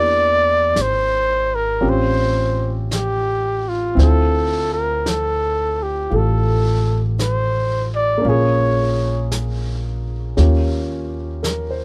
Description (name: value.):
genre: jazz ballad.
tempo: 56 BPM.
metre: 4/4.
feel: swing 69% on 8ths.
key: unclear.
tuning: A4 = 440 Hz.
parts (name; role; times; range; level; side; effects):
breathy trumpet; melody; 0.0-9.3 s; E#4 to D5; -21 LUFS; equal; none.
warm baby grand piano; accompaniment; 0.0-11.8 s; Bb3 to C5; -27 LUFS; equal; none.
upright bass; bass; 0.0-11.8 s; Ab1 to E2; -22 LUFS; equal; none.
vintage brush drum kit; drums; 0.8-11.8 s; brushed snare drum, hi-hat, snare drum; -33 LUFS; equal; none.
room: light reverb.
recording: dry, close 1970s-style studio recording.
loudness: -19 LUFS.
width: mono.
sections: 0.0-11.8 A section.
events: none.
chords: 0.0 Em7b5; 1.8 A7alt; 4.0 Dm9; 8.2 Bbm7; 10.4 Eb9.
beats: 0.76 1.83 2.91 | 3.98 5.05 6.12 7.18 | 8.25 9.31 10.37 11.44.